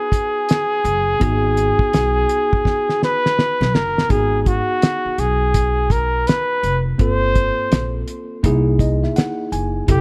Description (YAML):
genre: hip hop, jazz-hop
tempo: 83 BPM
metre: 4/4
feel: swing 64% on 16ths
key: G# dorian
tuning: A4 = 440 Hz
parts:
  - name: breathy flugelhorn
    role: melody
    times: 0.0-10.0 s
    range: F#4 to C5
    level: -21 LUFS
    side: equal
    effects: slapback echo
  - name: mellow tine electric piano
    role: accompaniment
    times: 0.0-10.0 s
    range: B2 to G#5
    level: -27 LUFS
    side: equal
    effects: none
  - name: cloth-damped thuddy drum kit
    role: drums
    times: 0.1-10.0 s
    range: hi-hat, kick drum, snare drum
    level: -21 LUFS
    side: equal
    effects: none
  - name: upright bass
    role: bass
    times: 0.8-10.0 s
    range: E#1 to C2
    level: -23 LUFS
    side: equal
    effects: none
room: studio ambience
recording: none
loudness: -18 LUFS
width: mono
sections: 0.0-4.1 A section; 4.1-10.0 B section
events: drum fill 2.7-4.1; tine electric piano fill 8.4-9.9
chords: 0.0 G#m7; 7.0 Gm11; 8.4 C7alt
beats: 0.49 | 1.21 1.93 2.65 3.38 | 4.10 4.82 5.55 6.27 | 6.99 7.71 8.44 9.16 | 9.88